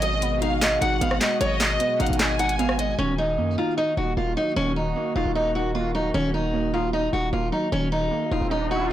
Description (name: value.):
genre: hip hop, trap.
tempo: 152 BPM.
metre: 4/4.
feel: half-time.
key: Eb minor.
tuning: A4 = 440 Hz.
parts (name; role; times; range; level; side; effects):
picked steel-string acoustic guitar; melody; 0.0-8.9 s; Db4 to Gb5; -25 LUFS; equal; none.
rich studio violin section; second line; 0.0-2.9 s; Eb5 to Ab5; -30 LUFS; equal; tape echo.
warbly dusty pluck; accompaniment; 0.0-8.9 s; Eb3 to Eb5; -29 LUFS; equal; chorus.
sweeping resonant pad; sustained chords; 0.0-8.9 s; Cb3 to Gb4; -32 LUFS; equal; chorus.
hard-hitting 808-style bass; bass; 0.0-8.9 s; Eb1 to Gb2; -28 LUFS; equal; none.
trap drum kit; drums; 0.0-2.9 s; handclaps, hi-hat, rim click, snare drum; -25 LUFS; equal; none.
riser; sound effects; 8.0-8.9 s; none; -31 LUFS; right 1 dB; none.
room: light reverb, digital ambience.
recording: blown-out, overdriven recording, overdrive.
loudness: -21 LUFS.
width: side -12 dB against mid.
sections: 0.0-3.0 A section; 3.0-8.9 B section.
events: riser 8.0-8.9.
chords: 0.0 Abm7; 3.0 Ebm.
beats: 0.22 0.62 1.01 | 1.41 1.80 2.20 2.59 | 2.99 3.38 3.77 4.17 | 4.57 4.96 5.35 5.75 | 6.14 6.54 6.93 7.33 | 7.72 8.12 8.51 8.91.